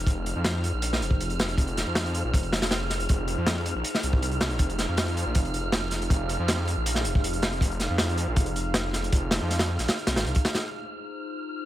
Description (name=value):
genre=drum and bass, jungle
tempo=159 BPM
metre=4/4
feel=straight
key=F minor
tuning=A4 = 436 Hz
part: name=warbly tape-like pad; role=sustained chords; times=0.0-11.7 s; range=Eb4 to F5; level=-35 LUFS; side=equal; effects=chorus, built-in reverb
part: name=detuned saw bass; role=bass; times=0.0-10.3 s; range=F1 to F2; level=-29 LUFS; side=equal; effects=none
part: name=wind-like tuned noise texture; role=texture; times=0.0-11.7 s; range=F6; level=-35 LUFS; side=right 2 dB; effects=built-in reverb
part: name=crunchy breakbeat drum kit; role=drums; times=0.1-10.6 s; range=hi-hat, kick drum, snare drum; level=-26 LUFS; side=equal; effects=none
room=small room ambience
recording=none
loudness=-24 LUFS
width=side -13 dB against mid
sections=0.0-10.6 A section; 10.6-11.7 B section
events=none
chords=0.0 Fm7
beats=| 0.07 0.45 0.83 1.20 | 1.58 1.96 2.33 2.71 | 3.09 3.47 3.85 4.22 | 4.60 4.98 5.35 5.73 | 6.11 6.49 6.86 7.24 | 7.62 8.00 8.37 8.75 | 9.13 9.51 9.88 10.26 | 10.64 11.01 11.39